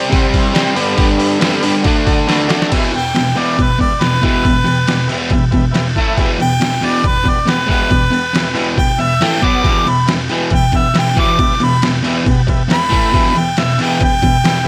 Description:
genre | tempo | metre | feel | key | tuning
garage rock duo or trio | 138 BPM | 4/4 | straight | E minor | A4 = 445 Hz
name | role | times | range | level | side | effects
overdriven combo organ | sustained chords | 0.0-14.7 s | B3 to A5 | -27 LUFS | equal | none
crunchy overdriven guitar | riff | 0.0-14.6 s | E2 to D4 | -18 LUFS | equal | none
trip hop sampler-style drum kit | drums | 0.1-14.6 s | crash cymbal, hi-hat, kick drum, snare drum | -19 LUFS | equal | none
clear harmonica | melody | 3.0-14.7 s | B4 to D6 | -19 LUFS | equal | overdrive
room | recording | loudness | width
little or no reverb | none | -14 LUFS | mono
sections
0.0-2.7 A section; 2.7-14.7 B section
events
drum fill 2.3-2.7; harmonica solo 2.7-14.7; transistor combo organ fill 5.5-6.2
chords
0.0 C; 0.8 G; 1.8 D; 2.7 Em; 6.0 A5; 6.2 Em; 9.2 A5; 9.4 B5; 9.7 Em; 12.9 A5; 13.1 Em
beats
0.13 0.56 | 0.99 1.42 1.85 2.28 | 2.71 3.14 3.57 4.00 | 4.44 4.87 5.30 5.74 | 6.17 6.61 7.04 7.48 | 7.91 8.35 8.78 9.22 | 9.65 10.09 10.52 10.96 | 11.40 11.83 12.27 12.71 | 13.14 13.58 14.02 14.45

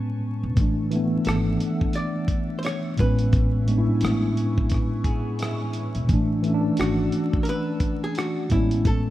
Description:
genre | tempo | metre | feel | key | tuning
lo-fi hip hop | 87 BPM | 4/4 | swing 58% on 16ths | A major | A4 = 440 Hz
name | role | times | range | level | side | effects
mellow tine electric piano | accompaniment | 0.0-9.1 s | A2 to E4 | -23 LUFS | equal | medium stereo tremolo
warbly tape-like pad | sustained chords | 0.0-9.1 s | D4 to E6 | -41 LUFS | left 1 dB | chorus, built-in reverb, phaser
upright bass | bass | 0.4-9.1 s | E1 to A1 | -27 LUFS | equal | none
dusty soul sampler-style drum kit | drums | 0.6-9.0 s | hi-hat, kick drum, rim click | -24 LUFS | equal | none
archtop guitar, miked and amplified | melody | 1.3-9.1 s | E4 to D5 | -30 LUFS | equal | none
electric guitar through a small old amp | second line | 5.0-6.1 s | E3 to G#4 | -38 LUFS | left 1 dB | analog delay
room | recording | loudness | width
light reverb | rough home demo mix, vinyl crackle | -21 LUFS | side -14 dB against mid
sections
0.0-9.1 A section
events
none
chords
0.0 Amaj9; 0.6 E9sus4; 3.0 Amaj9; 6.1 E9sus4; 8.5 Amaj9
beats
| 0.57 1.26 1.95 2.64 | 3.33 4.02 4.71 5.40 | 6.09 6.78 7.47 8.16 | 8.85

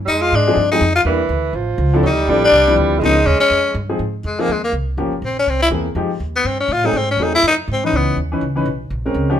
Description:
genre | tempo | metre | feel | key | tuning
jazz, small-group swing and bop | 244 BPM | 4/4 | swing 59% on 8ths | Ab major from 4.0 s | A4 = 443 Hz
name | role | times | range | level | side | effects
upright bass | bass | 0.0-9.4 s | G1 to A2 | -21 LUFS | right 1 dB | none
growling tenor saxophone | melody | 0.1-8.2 s | Ab3 to F4 | -15 LUFS | left 2 dB | none
mellow tenor saxophone | second line | 0.1-3.9 s | E3 to Ab3 | -20 LUFS | right 4 dB | none
clear concert grand piano | accompaniment | 0.5-9.4 s | E3 to B4 | -20 LUFS | left 1 dB | none
room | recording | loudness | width
moderate studio reverb, RT60 0.7 s | minimal, uncompressed stereo recording | -14 LUFS | side -10 dB against mid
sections
0.0-4.0 A section; 4.0-9.4 B section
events
tenor saxophone solo 4.0-9.4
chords
0.1 Fm7; 1.1 Em7b5; 1.5 A; 2.0 Dm9; 3.0 Db13; 4.0 Ab6; 5.0 Gm7b5; 5.5 C7b13; 6.0 Fm9; 6.9 Ab7b9; 7.9 Dbm9; 8.9 Bbm9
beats
| 0.07 0.31 0.56 0.81 | 1.05 1.30 1.54 1.79 | 2.03 2.28 2.52 2.77 | 3.01 3.26 3.50 3.75 | 4.00 4.24 4.49 4.73 | 4.98 5.22 5.47 5.71 | 5.96 6.21 6.45 6.70 | 6.94 7.19 7.43 7.68 | 7.92 8.17 8.42 8.66 | 8.91 9.15

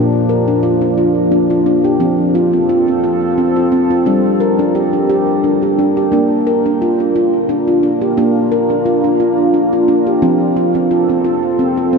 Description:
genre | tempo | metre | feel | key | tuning
world meditative, meditative tuned percussion | 88 BPM | 3/4 | swing 54% on 16ths | Bb major | A4 = 440 Hz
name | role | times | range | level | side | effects
deep dark ambient pad | sustained chords | 0.0-12.0 s | F3 to Bb4 | -17 LUFS | right 1 dB | chorus, built-in reverb, tremolo, shimmer reverb
handpan | arpeggios | 0.0-12.0 s | Bb2 to Bb4 | -13 LUFS | equal | ping-pong delay, shimmer reverb
room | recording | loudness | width
wet huge ambient reverb, RT60 8.4 s | in a vast, echoing space | -11 LUFS | side -4 dB against mid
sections
0.0-12.0 A section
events
none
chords
0.0 Bb; 2.0 F; 4.1 Gm; 6.1 Bb; 10.2 F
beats
0.64 1.32 | 2.01 2.69 3.38 | 4.06 4.75 5.43 | 6.12 6.80 7.49 | 8.17 8.85 9.54 | 10.22 10.91 11.59

